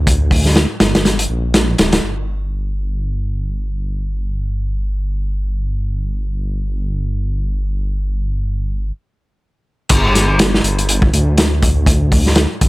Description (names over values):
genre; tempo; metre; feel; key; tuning
breakbeat, breaks; 122 BPM; 4/4; swing 58% on 16ths; unclear; A4 = 440 Hz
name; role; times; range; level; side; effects
dark detuned saw bass; bass; 0.0-12.7 s; D1 to D2; -17 LUFS; equal; none
crunchy breakbeat drum kit; drums; 0.1-2.0, 9.9-12.7 s; crash cymbal, hi-hat, kick drum, snare drum; -13 LUFS; equal; none
room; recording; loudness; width
little or no reverb; none; -14 LUFS; side -20 dB against mid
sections
0.0-2.0 A section; 2.0-9.9 B section; 9.9-12.7 C section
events
stop 8.9-9.9; drop 9.9-12.7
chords
none